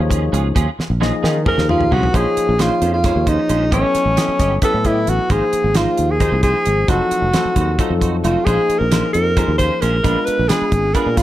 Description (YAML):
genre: electric jazz fusion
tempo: 266 BPM (eighths)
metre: 7/8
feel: straight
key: Bb minor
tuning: A4 = 436 Hz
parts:
  - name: barky tine electric piano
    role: accompaniment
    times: 0.0-11.2 s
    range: F3 to Eb5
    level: -23 LUFS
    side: left 5 dB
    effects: overdrive, lush chorus
  - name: sustaining fretless electric bass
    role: bass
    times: 0.0-11.2 s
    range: F1 to Eb3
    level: -19 LUFS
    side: equal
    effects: none
  - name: clean electric guitar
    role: stabs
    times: 0.1-11.2 s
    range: Gb3 to D#5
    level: -26 LUFS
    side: right 6 dB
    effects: ensemble chorus, tape echo
  - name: damped 70s drum kit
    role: drums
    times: 0.1-11.2 s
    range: hi-hat, kick drum, snare drum, toms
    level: -19 LUFS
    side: equal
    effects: none
  - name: clear alto saxophone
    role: melody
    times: 1.5-11.2 s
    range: C#4 to C5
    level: -18 LUFS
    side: right 1 dB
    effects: none
room: light reverb, small room ambience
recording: none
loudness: -14 LUFS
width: side -14 dB against mid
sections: 0.0-2.1 A section; 2.1-11.2 B section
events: drum fill 0.8-2.1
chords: 0.0 Ebm11; 2.1 Bbm9; 3.7 A7#11; 5.3 Ab69; 6.9 F7b9; 8.5 Bbm9; 10.0 Bb7b9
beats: 0.10 0.33 | 0.56 0.78 1.01 1.23 1.46 1.69 1.91 | 2.14 2.37 2.59 2.82 3.04 3.27 3.50 | 3.72 3.95 4.17 4.40 4.63 4.85 5.08 | 5.30 5.53 5.76 5.98 6.21 6.43 6.66 | 6.89 7.11 7.34 7.56 7.79 8.02 8.24 | 8.47 8.69 8.92 9.14 9.37 9.60 9.82 | 10.05 10.27 10.50 10.72 10.95 11.18